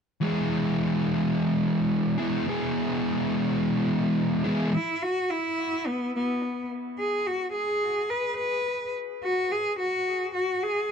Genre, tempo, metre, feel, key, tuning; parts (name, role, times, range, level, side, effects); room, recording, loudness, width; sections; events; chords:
rock; 106 BPM; 4/4; straight; E major; A4 = 440 Hz
fuzz guitar; riff; 0.2-4.7 s; E3 to G#4; -23 LUFS; equal; distortion
clear cello; melody; 4.7-10.9 s; B3 to B4; -26 LUFS; left 1 dB; analog delay
moderate small room reverb, RT60 0.5 s; dark, warm production; -24 LUFS; side -6 dB against mid
0.2-4.7 A section; 4.7-10.9 B section
0.2 E; 4.7 N.C.